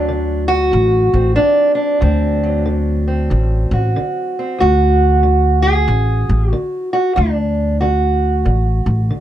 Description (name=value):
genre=acoustic country blues, solo or duo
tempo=93 BPM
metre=4/4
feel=swing 63% on 8ths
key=D mixolydian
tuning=A4 = 438 Hz
part: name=fingerpicked steel-string acoustic guitar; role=melody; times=0.0-9.2 s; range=D2 to G#4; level=-16 LUFS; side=right 1 dB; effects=none
part: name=upright bass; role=bass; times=0.0-9.1 s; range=A1 to D2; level=-15 LUFS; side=equal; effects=none
room=little or no reverb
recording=dry, close 1970s-style studio recording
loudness=-13 LUFS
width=side -12 dB against mid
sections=0.0-9.2 A section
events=none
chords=0.0 D7